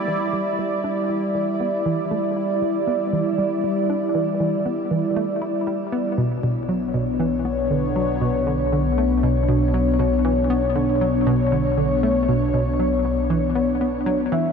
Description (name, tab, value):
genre	ambient, sequencer-driven space music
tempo	118 BPM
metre	4/4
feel	straight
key	B minor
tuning	A4 = 440 Hz
part	sweeping resonant pad	sustained chords	0.0-14.5 s	G3 to D5	-21 LUFS	left 1 dB	chorus, shimmer reverb
part	analog pluck	riff	0.1-14.5 s	B2 to E4	-25 LUFS	right 1 dB	chorus, shimmer reverb, ping-pong delay
part	fat analog bass	bass	6.2-14.5 s	B1 to E2	-25 LUFS	equal	none
part	soft octave-layered synth lead	melody	14.3-14.5 s	E5	-24 LUFS	left 1 dB	chorus
room	wet huge ambient reverb, RT60 7.8 s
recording	dreamy mix soaked in reverb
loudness	-19 LUFS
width	side -6 dB against mid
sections	0.0-6.2 A section; 6.2-14.5 B section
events	filter sweep on synth arpeggio sound 0.0-6.2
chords	0.0 Em7; 6.2 Bmadd9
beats	| 0.08 0.59 1.10 1.61 | 2.12 2.62 3.13 3.64 | 4.15 4.66 5.17 5.67 | 6.18 6.69 7.20 7.71 | 8.22 8.72 9.23 9.74 | 10.25 10.76 11.27 11.78 | 12.29 12.79 13.30 13.81 | 14.32